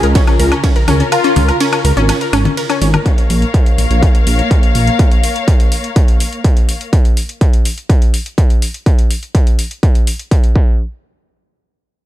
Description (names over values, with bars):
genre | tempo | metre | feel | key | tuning
melodic techno | 124 BPM | 4/4 | straight | Bb minor | A4 = 440 Hz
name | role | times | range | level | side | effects
wide unison lead | melody | 0.0-1.6 s | F4 | -20 LUFS | left 2 dB | analog chorus, sidechain pumping, ping-pong delay
warm studio string section | sustained chords | 0.0-6.9 s | Db3 to F5 | -20 LUFS | left 2 dB | sidechain pumping
analog pluck | arpeggios | 0.0-3.0 s | Db4 to Bb4 | -18 LUFS | left 1 dB | chorus, sidechain pumping, digital delay
dark detuned saw bass | bass | 0.0-4.9 s | Ab1 to Db2 | -13 LUFS | equal | sidechain pumping
techno drum kit | drums | 0.0-10.5 s | congas, hi-hat, ride cymbal, woodblock | -21 LUFS | left 3 dB | none
electronic kick drum | drums | 0.2-10.7 s | none | -11 LUFS | equal | distortion
room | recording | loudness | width
digital ambience | dark, warm production | -10 LUFS | side -14 dB against mid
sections
0.0-3.1 A section; 3.1-10.8 B section; 10.8-12.1 C section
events
drop 0.0-3.1; kick drops out 1.1-3.1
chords
0.0 Db; 3.1 Bbm; 10.6 N.C.